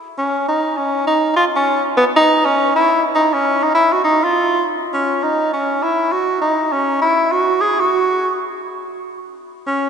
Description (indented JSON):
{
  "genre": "jazz",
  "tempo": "202 BPM",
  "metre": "4/4",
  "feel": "swing 63% on 8ths",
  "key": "unclear",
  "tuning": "A4 = 440 Hz",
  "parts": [
    { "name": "clear tenor saxophone", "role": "solo", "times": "0.2-9.9 s", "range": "B3 to G#4", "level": "-14 LUFS", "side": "equal", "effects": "none" }
  ],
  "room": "wet cathedral reverb, RT60 4.1 s",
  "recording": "recorded in a church or concert hall, nothing above 10.5 kHz",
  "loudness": "-14 LUFS",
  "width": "side -7 dB against mid",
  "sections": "0.0-4.9 A section; 4.9-9.9 A section",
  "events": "none",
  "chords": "none"
}